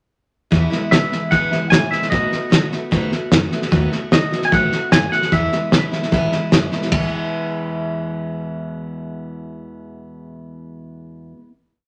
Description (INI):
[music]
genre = rockabilly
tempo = 150 BPM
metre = 4/4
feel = straight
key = E major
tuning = A4 = 438 Hz
[part]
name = picked steel-string acoustic guitar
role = accompaniment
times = 0.5-11.5 s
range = E2 to F#4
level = -26 LUFS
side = equal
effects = none
[part]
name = upright bass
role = bass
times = 0.5-11.3 s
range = E1 to B2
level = -29 LUFS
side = equal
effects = none
[part]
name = cloth-damped thuddy drum kit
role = drums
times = 0.5-7.0 s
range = hi-hat, kick drum, ride cymbal, snare drum, toms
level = -20 LUFS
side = equal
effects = none
[part]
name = twangy electric guitar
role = melody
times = 0.9-5.9 s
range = D#5 to G#5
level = -22 LUFS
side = equal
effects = none
[sound]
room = moderate studio reverb, RT60 0.6 s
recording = none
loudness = -18 LUFS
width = mono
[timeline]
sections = 0.5-6.9 A section; 6.9-10.1 final chord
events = none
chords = 0.5 E; 2.1 B7; 5.3 E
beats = | 0.52 0.92 1.32 1.72 | 2.12 2.52 2.92 3.32 | 3.72 4.12 4.52 4.92 | 5.32 5.72 6.12 6.52 | 6.92 7.32 7.72 8.12 | 8.52 8.92 9.32 9.72